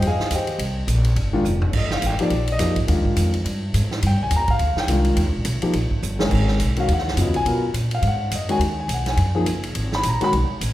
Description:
modal jazz; 210 BPM; 4/4; swing 59% on 8ths; G# dorian from 6.3 s; A4 = 440 Hz
dark grand piano; accompaniment; 0.0-10.3 s; C#3 to B5; -23 LUFS; left 1 dB
upright bass; bass; 0.0-10.7 s; F1 to B2; -21 LUFS; equal
swinging big-band drum kit; drums; 0.0-10.7 s; crash cymbal, hi-hat, kick drum, ride cymbal, snare drum, toms; -27 LUFS; right 1 dB
moderate recital hall reverb, RT60 1.4 s; recorded in a church or concert hall; -18 LUFS; side -14 dB against mid
0.0-6.3 A section; 6.3-10.7 A section
drum fill 1.5, 6.0
0.0 Fm11; 1.7 Cm7 (rootless); 5.2 Eb7; 6.3 G#m7

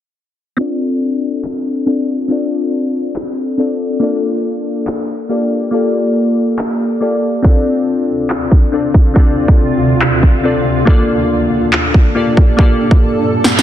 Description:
future bass; 140 BPM; 4/4; half-time; D minor; A4 = 440 Hz
glassy digital keys; accompaniment; 0.6-13.6 s; Bb3 to D5; -15 LUFS; left 2 dB; chorus, sidechain pumping, tape echo
electronic handclaps and snare drum; drums; 1.4-13.6 s; -18 LUFS; equal
shimmering ambient pad; sustained chords; 8.2-13.6 s; D2 to A4; -18 LUFS; right 1 dB; chorus, built-in reverb, sidechain pumping
electronic kick drum; drums; 7.4-13.0 s; -9 LUFS; equal
reverse cymbal; sound effects; 13.5-13.6 s; -16 LUFS; right 4 dB
light reverb; dense, heavily limited modern master, low-pass filter; -12 LUFS; side -11 dB against mid
0.6-13.6 A section
filter sweep 0.6-13.6; drum fill 13.4; reverse cymbal 13.5
0.6 Dm7; 4.0 Bbmaj7; 7.4 Dm7; 10.9 Bbmaj7; 12.4 Gm9

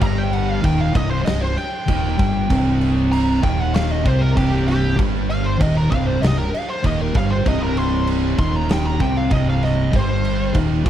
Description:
stoner and doom metal; 97 BPM; 4/4; straight; C minor; A4 = 440 Hz
fuzz lead guitar; melody; 0.0-10.5 s; G4 to C6; -25 LUFS; equal; wah, distortion, tape echo
thick fuzz guitar; riff; 0.0-10.9 s; C2 to C4; -23 LUFS; left 5 dB; distortion
thick fuzz guitar; riff; 0.0-10.9 s; C2 to C4; -22 LUFS; right 6 dB; distortion
growling fingered electric bass; bass; 0.0-10.9 s; C1 to C2; -22 LUFS; equal; overdrive
big rock drum kit; drums; 0.0-10.9 s; crash cymbal, kick drum, snare drum; -23 LUFS; equal
small room ambience; dark, warm production, vinyl crackle; -16 LUFS; side -11 dB against mid
0.0-10.9 A section
lead electric guitar solo 0.0-10.9
0.0 Cm

